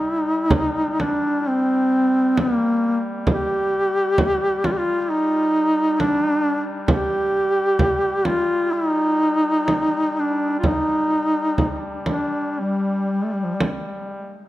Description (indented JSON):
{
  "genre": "caucasian folk, Caucasian lament",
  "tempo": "58-67 BPM",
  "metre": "4/4",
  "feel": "rubato",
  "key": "G minor",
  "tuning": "A4 = 440 Hz",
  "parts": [
    { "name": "mellow duduk", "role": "melody", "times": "0.0-13.6 s", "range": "F3 to G4", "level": "-19 LUFS", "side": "equal", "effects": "tape echo" },
    { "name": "clear duduk", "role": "drone", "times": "0.0-14.5 s", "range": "G3", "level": "-31 LUFS", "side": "left 2 dB", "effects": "none" },
    { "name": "frame drum", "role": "percussion", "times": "0.5-13.9 s", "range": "none", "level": "-22 LUFS", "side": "right 1 dB", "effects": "none" }
  ],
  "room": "light reverb",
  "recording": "none",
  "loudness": "-18 LUFS",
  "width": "side -15 dB against mid",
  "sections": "0.0-14.5 A section",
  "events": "none",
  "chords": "none"
}